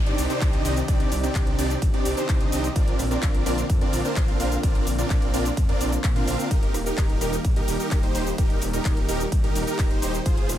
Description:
EDM, festival progressive house; 128 BPM; 4/4; straight; A4 = 440 Hz
lush unison pad; sustained chords; 0.0-10.6 s; C3 to D5; -32 LUFS; equal; chorus, sidechain pumping
wide detuned saw bass; bass; 0.0-10.6 s; Eb1 to Bb2; -29 LUFS; equal; chorus, sidechain pumping
downlifter; sound effects; 0.0-2.8 s; -41 LUFS; equal
supersaw chords; riff; 0.1-10.5 s; C4 to F5; -27 LUFS; right 1 dB; sidechain pumping, ping-pong delay
big-room dance drum kit; drums; 0.1-10.6 s; handclaps, hi-hat, ride cymbal, rim click, shaker; -33 LUFS; equal; overdrive
electronic kick drum; drums; 0.4-10.4 s; -22 LUFS; equal
little or no reverb; -21 LUFS; side -11 dB against mid
0.0-10.6 A section
0.0 Cmadd9; 2.8 Bbadd9; 6.5 Eb

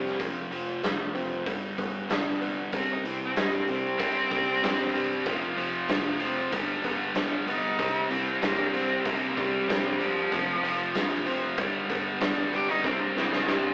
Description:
quiet-loud alternative rock; 95 BPM; 4/4; straight; C major; A4 = 441 Hz
bright cello; melody; 0.0-13.7 s; Bb2 to G4; -33 LUFS; equal
electric guitar through a small old amp; arpeggios; 0.0-13.7 s; F2 to D4; -36 LUFS; equal
thick fuzz guitar; riff; 0.0-13.7 s; F2 to C4; -36 LUFS; equal; distortion
fingered electric bass; bass; 0.0-13.7 s; F1 to G2; -48 LUFS; equal
raw garage drum kit; drums; 0.1-13.6 s; hi-hat, kick drum, snare drum; -34 LUFS; equal
scooped high-gain guitar; riff; 4.0-13.7 s; F2 to C4; -33 LUFS; equal; distortion
light reverb; rough rehearsal-room recording, tube saturation, AM radio sound; -28 LUFS; mono
0.0-13.7 A section
cello solo 0.0-13.7; drum fill 12.8-13.7
0.2 F; 1.5 G; 2.7 C; 4.0 C5; 5.3 F; 6.5 G; 7.8 C; 9.1 C5; 10.3 F; 11.6 G; 12.8 C

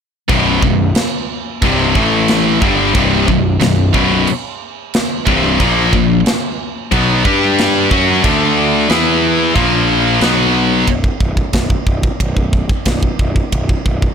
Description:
heavy metal; 91 BPM; 4/4; straight; B harmonic minor; A4 = 440 Hz
heavy high-gain guitar; riff; 0.3-10.9 s; B1 to G4; -16 LUFS; right 14 dB; distortion
high-gain distorted guitar; riff; 0.3-10.9 s; B1 to G4; -14 LUFS; left 12 dB; distortion
fuzz picked electric bass; bass; 0.3-14.1 s; B0 to G2; -18 LUFS; right 1 dB; overdrive
tight metal drum kit; drums; 0.3-14.1 s; crash cymbal, kick drum, ride cymbal, snare drum; -17 LUFS; right 1 dB
light reverb; blown-out, overdriven recording, overdrive; -11 LUFS; side -7 dB against mid
0.3-10.9 A section; 10.9-14.1 B section
0.3 B5; 2.0 A5; 2.6 Bm; 5.6 A#5; 7.2 G5; 7.9 F#5; 8.2 D5; 8.9 E5; 9.6 A#5; 10.2 B5; 10.9 N.C.

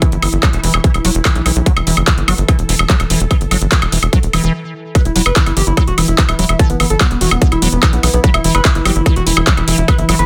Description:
psychedelic trance; 146 BPM; 4/4; straight; E minor; A4 = 436 Hz
evolving wavetable pad; sustained chords; 0.0-10.3 s; E3 to A4; -26 LUFS; equal; chorus, built-in reverb, sidechain pumping
liquid acid bass; riff; 0.0-10.1 s; E3 to F#3; -23 LUFS; equal; chorus, sidechain pumping, tape echo
big-room dance drum kit; drums; 0.0-10.3 s; handclaps, hi-hat, woodblock; -19 LUFS; equal; overdrive
electronic kick drum; drums; 0.0-10.0 s; -14 LUFS; equal
tight sequencer bass; bass; 0.1-10.2 s; E1 to B1; -18 LUFS; equal
metallic wobble bass; second line; 0.4-1.4 s; E3 to A3; -37 LUFS; equal
overdriven synth lead; melody; 5.0-10.3 s; B3 to B4; -22 LUFS; equal; phaser, vintage 12-bit sampler grit, sidechain pumping, dub echo
little or no reverb; dense, heavily limited modern master; -13 LUFS; mono
0.0-5.0 A section; 5.0-10.3 B section
filter sweep on acid bass 0.0-5.0; break 4.5-5.0; drop 5.0-10.3
0.0 E5

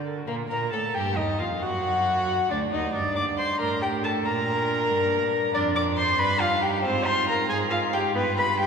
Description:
quick classical-period movement for string quartet; 91 BPM (dotted quarters); 6/8; rubato; G minor; A4 = 440 Hz
dark violin; second line; 0.0-8.7 s; F#4 to D6; -26 LUFS; left 1 dB
warm viola; accompaniment; 0.0-8.7 s; Bb3 to D5; -28 LUFS; equal
rich cello; bass; 0.0-8.7 s; D2 to D3; -30 LUFS; right 3 dB
rich violin; melody; 0.3-8.7 s; Bb3 to Bb4; -31 LUFS; left 2 dB
wet church reverb, RT60 3.3 s; minimal, uncompressed stereo recording; -22 LUFS; side -6 dB against mid
0.3-8.7 A section
0.3 Gm; 1.6 D/F#; 2.9 G5; 4.3 Gm/Bb; 5.5 Dm7/F; 6.2 G5; 6.8 Fm/Ab; 8.2 G7

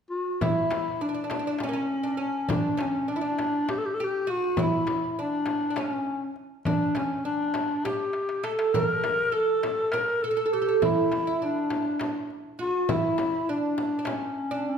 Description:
Turkish makam ensemble; 202 BPM (eighths); 7/8; straight; A4 = 440 Hz
growling clarinet; melody; 0.1-14.8 s; C#4 to Bb4; -27 LUFS; left 2 dB
oud; second line; 0.4-14.8 s; Bb3 to Bb4; -30 LUFS; right 5 dB
darbuka; percussion; 0.4-14.7 s; -34 LUFS; right 2 dB
frame drum; percussion; 0.4-14.2 s; -34 LUFS; left 4 dB
wet recital hall reverb, RT60 1.3 s; recorded in a church or concert hall; -24 LUFS; side -7 dB against mid
0.4-14.8 A section
drum fill 8.1-8.7

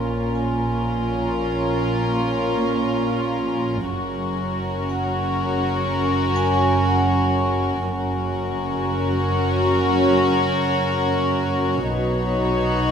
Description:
cinematic; 60 BPM; 4/4; straight; A4 = 440 Hz
warm studio violin section; melody; 0.0-12.9 s; Bb4 to C#5; -28 LUFS; left 8 dB
warm studio violin section; second line; 0.0-12.9 s; F4 to Gb4; -25 LUFS; left 3 dB
warm studio viola section; accompaniment; 0.0-12.9 s; Db4 to D#4; -25 LUFS; right 4 dB
dark studio cello section; bass; 0.0-12.9 s; Gb2 to B2; -27 LUFS; right 1 dB
dark studio double bass section; bass; 0.0-12.9 s; Gb1 to B1; -27 LUFS; right 2 dB
vibraphone with hard mallets; texture; 0.0-11.9 s; Bb4 to Bb5; -30 LUFS; left 1 dB
moderate recital hall reverb, RT60 1.5 s; -19 LUFS; side -7 dB against mid
0.0-12.9 A section
0.0 Bbm; 3.9 Gb; 11.9 Badd9

